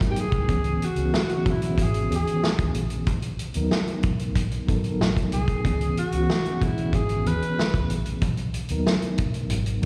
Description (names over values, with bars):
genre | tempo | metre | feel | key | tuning
lush 1970s-style soul | 93 BPM | 4/4 | straight | C# dorian | A4 = 440 Hz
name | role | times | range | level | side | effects
mellow reed electric piano | accompaniment | 0.0-9.9 s | D#3 to A#4 | -30 LUFS | equal | tremolo, plate reverb
vintage muted fingered electric bass | bass | 0.0-9.9 s | G#1 to D#2 | -30 LUFS | equal | none
vintage drum kit | drums | 0.0-9.9 s | hi-hat, kick drum, snare drum | -28 LUFS | equal | none
growling alto saxophone | melody | 0.1-7.9 s | E4 to B4 | -31 LUFS | equal | plate reverb, slapback echo
room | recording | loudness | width
light reverb | live gig heard through the venue's PA, recital hall reverb | -24 LUFS | mono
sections
0.0-9.9 A section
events
none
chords
0.5 C#m7; 3.1 Bmaj7; 5.6 C#m7; 8.2 Bmaj7